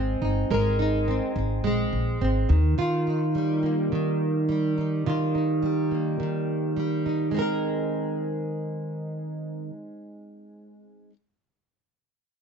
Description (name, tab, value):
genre	pop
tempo	105 BPM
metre	4/4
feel	straight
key	Ab major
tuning	A4 = 440 Hz
part	flamenco guitar	accompaniment	0.0-11.1 s	Eb3 to Bb4	-25 LUFS	right 1 dB	double-tracked left and right
part	upright bass	bass	0.0-2.7 s	G1 to Eb2	-24 LUFS	left 1 dB	none
room	moderate small room reverb, RT60 0.5 s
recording	dark, warm production, nothing above 7.9 kHz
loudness	-23 LUFS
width	side -6 dB against mid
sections	0.0-7.3 A section; 7.3-9.6 B section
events	none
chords	0.0 Ab; 2.5 Ebadd9; 7.3 Abadd9